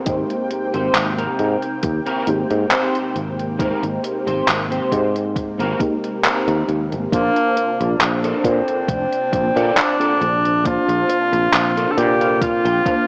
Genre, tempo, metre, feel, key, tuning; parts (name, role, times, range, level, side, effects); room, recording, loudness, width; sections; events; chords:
vaporwave; 68 BPM; 4/4; swing 53% on 16ths; Bb major; A4 = 440 Hz
lush unison pad; sustained chords; 0.0-13.1 s; C3 to G5; -33 LUFS; equal; chorus, phaser
electric guitar at the edge of break-up; riff; 0.0-13.1 s; C4 to G5; -27 LUFS; equal; ensemble chorus, tape echo
mellow FM electric piano; accompaniment; 0.1-13.1 s; Ab3 to A5; -27 LUFS; equal; ensemble chorus, tape echo
sustaining fretless electric bass; bass; 0.1-12.8 s; F1 to Bb2; -24 LUFS; equal
electronic kick drum; drums; 0.1-13.0 s; -28 LUFS; equal; vintage 12-bit sampler grit
gated 80s digital drum machine; drums; 0.1-13.0 s; handclaps, hi-hat; -23 LUFS; equal; gated reverb, vintage 12-bit sampler grit
warm tenor saxophone; melody; 7.1-13.1 s; Bb3 to A4; -21 LUFS; equal; tape echo
moderate concert hall reverb, RT60 2.0 s, digital ambience; worn, warbling old tape, cassette tape, warbly pitch drift, small speaker sound; -19 LUFS; mono
0.0-7.1 A section; 7.1-13.1 B section
clean electric guitar fill 11.5-13.1
0.0 Abmaj9; 7.1 Bbmaj9